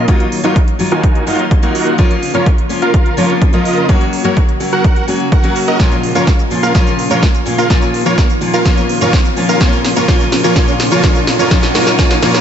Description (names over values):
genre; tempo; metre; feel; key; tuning
EDM, festival progressive house; 126 BPM; 4/4; straight; Bb minor; A4 = 444 Hz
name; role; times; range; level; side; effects
picked steel-string acoustic guitar; accompaniment; 0.0-12.4 s; Bb2 to Gb4; -16 LUFS; left 2 dB; sidechain pumping, dub echo
lush unison pad; sustained chords; 0.0-12.4 s; Db3 to Db5; -23 LUFS; equal; chorus, sidechain pumping
dense compressed supersaw; riff; 0.0-12.4 s; Eb4 to Ab5; -16 LUFS; right 2 dB; sidechain pumping, low-pass filter, dub echo
detuned saw bass; bass; 0.0-12.4 s; Eb1 to Gb2; -30 LUFS; right 1 dB; none
riser; sound effects; 6.4-12.4 s; none; -26 LUFS; right 1 dB; none
big-room dance drum kit; drums; 0.1-12.4 s; cabasa, hi-hat, snare drum; -20 LUFS; right 1 dB; none
electronic kick drum; drums; 0.1-12.1 s; none; -12 LUFS; equal; none
room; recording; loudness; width
light reverb; nothing above 7.9 kHz; -10 LUFS; side -9 dB against mid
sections
0.0-12.4 A section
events
build-up 0.0-12.4; filter sweep on supersaw synth 0.0-12.4; filter sweep on analog synth pad 0.0-12.4; drum fill 5.8-12.4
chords
0.1 Ebmadd9; 2.0 Bbm/F; 3.9 Gb; 5.8 Bbm; 7.7 Ebsus2; 9.6 Bbm/F; 11.5 Gb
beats
| 0.08 0.56 1.04 1.51 | 1.99 2.46 2.94 3.42 | 3.89 4.37 4.84 5.32 | 5.80 6.27 6.75 7.23 | 7.70 8.18 8.65 9.13 | 9.61 10.08 10.56 11.04 | 11.51 11.99